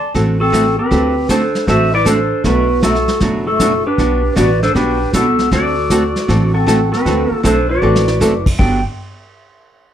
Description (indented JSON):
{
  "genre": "country, western swing",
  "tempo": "156 BPM",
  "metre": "4/4",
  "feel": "swing 66% on 8ths",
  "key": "G major",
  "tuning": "A4 = 438 Hz",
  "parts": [
    { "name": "clean lap steel guitar", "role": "melody", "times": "0.0-8.8 s", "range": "F#4 to C6", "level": "-17 LUFS", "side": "left 1 dB", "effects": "none" },
    { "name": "breathy clarinet", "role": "second line", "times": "0.0-8.8 s", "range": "A3 to D5", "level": "-20 LUFS", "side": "right 1 dB", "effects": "none" },
    { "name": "archtop guitar, miked and amplified", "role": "accompaniment", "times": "0.1-8.8 s", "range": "G2 to A4", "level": "-18 LUFS", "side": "right 1 dB", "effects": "none" },
    { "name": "upright bass", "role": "bass", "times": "0.1-8.8 s", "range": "F#1 to D2", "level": "-19 LUFS", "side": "equal", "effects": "none" },
    { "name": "vintage brush drum kit", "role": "drums", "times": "0.1-8.7 s", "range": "brushed snare drum, crash cymbal, hi-hat, kick drum, snare drum", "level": "-19 LUFS", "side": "equal", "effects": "none" }
  ],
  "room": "light reverb",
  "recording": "none",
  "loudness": "-12 LUFS",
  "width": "side -10 dB against mid",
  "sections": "0.0-7.0 A section; 7.0-8.6 B section; 8.6-9.9 C section",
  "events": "drum fill 7.8-8.2",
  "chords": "0.0 D7; 2.4 Bm7; 4.0 Gmaj9; 5.5 D7; 8.6 Gmaj7"
}